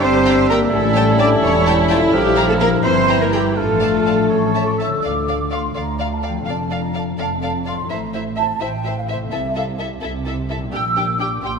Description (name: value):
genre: cinematic, playful, whimsical film cue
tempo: 85 BPM (dotted quarters)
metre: 6/8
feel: straight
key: D minor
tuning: A4 = 440 Hz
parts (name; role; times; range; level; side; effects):
- mellow clarinet; second line; 0.0-4.8 s; C#4 to E4; -28 LUFS; left 2 dB; none
- mellow large flute ensemble; second line; 0.0-11.6 s; E5 to E6; -25 LUFS; right 2 dB; none
- warm oboe; second line; 0.0-4.9 s; C#5 to G5; -27 LUFS; right 2 dB; none
- dark studio viola section; accompaniment; 0.0-11.5 s; D4 to A4; -26 LUFS; equal; none
- mellow bassoon; accompaniment; 0.0-4.8 s; E3 to A3; -23 LUFS; right 2 dB; none
- dark French horn section; sustained chords; 0.0-4.8 s; E3 to D4; -21 LUFS; left 3 dB; none
- concert harp; arpeggios; 0.0-11.6 s; G2 to Bb5; -24 LUFS; left 7 dB; none
- dark studio double bass section; bass; 0.0-11.6 s; E1 to D2; -24 LUFS; right 2 dB; none
- warm studio cello section; bass; 0.0-11.6 s; D2 to D5; -23 LUFS; right 3 dB; none
- warm studio violin section; melody; 0.3-11.5 s; E5 to Bb5; -28 LUFS; left 4 dB; none
- rich studio violin section; second line; 0.3-11.5 s; G4 to G5; -30 LUFS; equal; none
room: wet scoring stage reverb, RT60 1.8 s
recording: none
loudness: -16 LUFS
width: side -5 dB against mid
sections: 0.0-5.0 A section; 5.0-11.6 B section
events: none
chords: 0.0 Em7b5/G; 0.7 A7; 2.1 Bb6; 2.8 Edim/G; 3.6 Dm/A; 4.3 A; 5.0 Dm; 6.5 Dm/F; 7.9 Am; 9.3 Am/C; 10.7 Gm/Bb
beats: 0.03 | 0.73 1.43 | 2.14 2.85 | 3.58 4.31 | 5.04 5.75 | 6.47 7.18 | 7.89 8.60 | 9.31 10.02 | 10.72 11.42